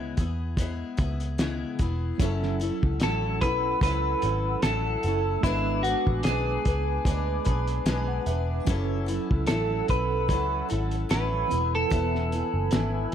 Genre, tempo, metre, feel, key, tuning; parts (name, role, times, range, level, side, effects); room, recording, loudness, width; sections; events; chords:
indie pop, bedroom pop; 74 BPM; 4/4; swing 55% on 16ths; F# minor; A4 = 441 Hz
picked steel-string acoustic guitar; accompaniment; 0.0-13.1 s; C#3 to B4; -34 LUFS; left 6 dB; wide subtle chorus, vibrato effect
vintage muted picked electric bass; bass; 0.0-13.1 s; E1 to E2; -29 LUFS; equal
cloth-damped thuddy drum kit; drums; 0.2-13.1 s; hi-hat, kick drum, snare drum; -28 LUFS; equal
mellow tine electric piano; accompaniment; 2.2-13.1 s; E3 to B5; -34 LUFS; right 6 dB; medium stereo tremolo
warbly tape-like pad; sustained chords; 2.8-13.1 s; A4 to E6; -36 LUFS; right 2 dB; chorus, built-in reverb, phaser
clean electric guitar; melody; 3.0-13.1 s; E4 to B4; -28 LUFS; equal; wide subtle chorus
light reverb; -24 LUFS; side -9 dB against mid
0.0-2.2 A section; 2.2-13.1 B section
tine electric piano fill 7.0-8.7
0.0 C#m7; 2.2 F#m7; 5.4 G#dim; 8.7 F#m7; 11.5 E